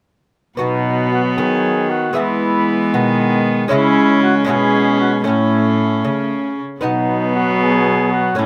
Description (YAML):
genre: classical, renaissance-style consort dance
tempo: 77 BPM (dotted quarters)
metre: 6/8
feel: straight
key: B mixolydian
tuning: A4 = 441 Hz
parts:
  - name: mellow cornet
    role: melody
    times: 0.6-8.5 s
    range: D#4 to G#4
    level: -23 LUFS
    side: equal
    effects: none
  - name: warm viola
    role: second line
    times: 0.6-8.5 s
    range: B3 to C#4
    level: -21 LUFS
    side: equal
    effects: none
  - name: clear trombone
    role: accompaniment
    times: 0.6-8.5 s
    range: F#3 to A3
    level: -23 LUFS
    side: equal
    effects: none
  - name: lute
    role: accompaniment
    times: 0.6-8.5 s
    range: A2 to E5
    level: -25 LUFS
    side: equal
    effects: none
  - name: rich cello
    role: bass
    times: 0.6-8.5 s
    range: A2 to E3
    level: -23 LUFS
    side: equal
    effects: none
room: light reverb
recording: none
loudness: -16 LUFS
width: mono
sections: 0.6-8.5 A section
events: none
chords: 0.6 B; 2.2 E; 3.7 C#m; 5.3 A; 6.8 B